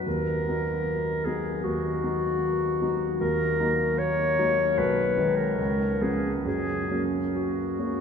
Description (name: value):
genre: classical, romantic duo for clarinet and grand piano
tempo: 67-78 BPM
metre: 4/4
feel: rubato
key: F# major from 3.2 s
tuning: A4 = 441 Hz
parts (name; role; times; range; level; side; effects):
- warm baby grand piano; accompaniment; 0.0-8.0 s; B1 to D#4; -27 LUFS; right 1 dB; none
- warm clarinet; melody; 0.1-8.0 s; F#4 to C#5; -26 LUFS; left 2 dB; none
room: wet cathedral reverb, RT60 6.0 s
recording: none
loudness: -24 LUFS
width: side -6 dB against mid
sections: 0.0-8.0 A section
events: none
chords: 0.1 B/D#; 3.2 D#m; 4.8 G#m/B; 5.6 C#7; 6.5 F#